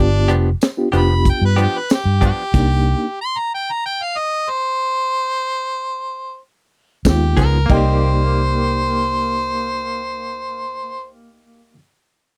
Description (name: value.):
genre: straight-eighth soul blues.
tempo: 93 BPM.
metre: 4/4.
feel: straight.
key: C minor.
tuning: A4 = 440 Hz.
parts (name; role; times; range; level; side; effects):
bright harmonica; melody; 0.0-11.1 s; D4 to C6; -23 LUFS; equal; overdrive.
reed electric piano; accompaniment; 0.0-3.1, 7.0-11.7 s; Ab3 to D5; -24 LUFS; equal; fast tremolo.
vintage muted fingered electric bass; bass; 0.0-2.9, 7.0-11.7 s; F1 to G2; -19 LUFS; equal; none.
direct-recorded clean electric guitar; stabs; 0.3-2.4, 7.4-11.8 s; F3 to Ab4; -27 LUFS; equal; tremolo.
tight funk drum kit; drums; 0.3-2.7, 7.0-7.9 s; crash cymbal, hi-hat, kick drum, snare drum, tambourine; -18 LUFS; equal; none.
dark upright piano; second line; 7.7-11.7 s; Eb5 to G5; -27 LUFS; equal; none.
room: little or no reverb.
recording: dry, close 1970s-style studio recording.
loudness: -18 LUFS.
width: mono.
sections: 0.0-7.7 A section; 7.7-10.3 B section.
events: stop 2.5-7.0.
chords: 0.0 G7; 2.5 Cm7; 7.0 Db7; 7.7 Cm7.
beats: 0.61 1.25 1.90 | 2.54 3.18 3.83 4.47 | 5.12 5.76 6.40 7.05 | 7.69 8.34 8.98 9.62.